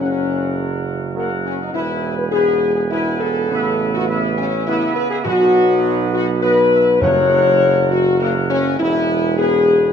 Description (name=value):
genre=classical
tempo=102 BPM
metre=3/4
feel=straight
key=unclear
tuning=A4 = 436 Hz
part: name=mellow trumpet section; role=melody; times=0.0-9.9 s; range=A#4 to G#5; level=-25 LUFS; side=equal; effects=none
part: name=bright trombone section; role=sustained chords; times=0.0-9.9 s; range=G#2 to B3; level=-25 LUFS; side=right 4 dB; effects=none
part: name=mellow French horn section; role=sustained chords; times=0.0-9.9 s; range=A#3 to C#5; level=-16 LUFS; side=left 3 dB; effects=none
part: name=warm tuba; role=bass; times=0.0-9.9 s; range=E1 to B1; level=-21 LUFS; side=right 6 dB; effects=none
part: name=timpani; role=percussion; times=5.3-7.9 s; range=F#2 to B2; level=-28 LUFS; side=left 1 dB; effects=none
room=wet large studio reverb, RT60 1.3 s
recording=minimal, uncompressed stereo recording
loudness=-14 LUFS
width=side -7 dB against mid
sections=0.0-9.9 A section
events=none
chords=0.0 F#; 1.7 E; 3.5 Aadd9; 5.3 B; 7.0 F#; 8.8 E